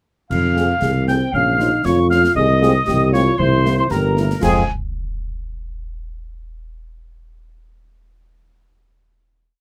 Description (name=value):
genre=military-style march for wind band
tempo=117 BPM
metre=2/4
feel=straight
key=F minor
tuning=A4 = 440 Hz
part: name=dark trumpet section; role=melody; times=0.3-4.6 s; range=Ab4 to G5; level=-26 LUFS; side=equal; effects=none
part: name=warm woodwind section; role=second line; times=0.3-4.6 s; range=Ab4 to G5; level=-28 LUFS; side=equal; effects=none
part: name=wooden piccolo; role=second line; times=0.3-4.7 s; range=Ab5 to G6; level=-24 LUFS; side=equal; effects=none
part: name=mellow tuba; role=bass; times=0.3-4.6 s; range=G1 to F2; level=-20 LUFS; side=equal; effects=none
part: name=clash cymbals, concert bass drum and concert snare drum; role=drums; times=0.3-4.7 s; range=none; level=-29 LUFS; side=equal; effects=none
part: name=mellow French horn section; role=accompaniment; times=0.6-4.6 s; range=F3 to Ab4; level=-26 LUFS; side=equal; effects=none
part: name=mellow euphonium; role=second line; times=0.8-4.1 s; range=C4 to Ab4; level=-24 LUFS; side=equal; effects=none
room=moderate booth ambience, RT60 0.2 s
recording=close, detailed microphones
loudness=-17 LUFS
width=mono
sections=0.3-4.4 A section; 4.4-5.5 final chord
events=none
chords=0.3 Fm; 1.3 Bbm; 2.4 Fm/C; 3.4 C7; 4.4 Fm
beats=| 0.30 0.82 | 1.33 1.85 | 2.36 2.88 | 3.39 3.91 | 4.42